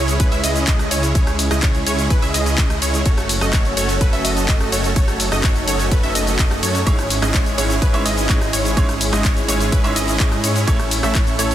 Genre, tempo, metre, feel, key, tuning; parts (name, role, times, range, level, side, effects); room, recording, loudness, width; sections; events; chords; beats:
EDM, festival progressive house; 126 BPM; 4/4; straight; C# minor; A4 = 440 Hz
lush unison pad; sustained chords; 0.0-11.5 s; C#3 to A4; -28 LUFS; equal; chorus, sidechain pumping
wide unison pluck; arpeggios; 0.0-11.5 s; B4 to E5; -27 LUFS; equal; sidechain pumping, dub echo
supersaw chords; riff; 0.0-11.5 s; G#3 to E5; -22 LUFS; right 1 dB; sidechain pumping, dub echo
detuned saw bass; bass; 0.0-11.5 s; F#1 to G#2; -23 LUFS; equal; sidechain pumping
house drum kit; drums; 0.1-11.5 s; handclaps, hi-hat, ride cymbal, rim click, shaker; -23 LUFS; left 1 dB
electronic kick drum; drums; 0.2-11.2 s; -17 LUFS; equal
bright grand piano; accompaniment; 6.9-11.5 s; G#2 to E5; -25 LUFS; right 3 dB; sidechain pumping, dub echo
little or no reverb; dense, heavily limited modern master; -15 LUFS; side -12 dB against mid
0.0-11.5 A section
0.0 C#m; 3.1 F#m; 6.9 C#m/G#; 10.7 A
0.20 0.68 | 1.15 1.63 2.10 2.58 | 3.06 3.53 4.01 4.49 | 4.96 5.44 5.91 6.39 | 6.87 7.34 7.82 8.29 | 8.77 9.25 9.72 10.20 | 10.68 11.15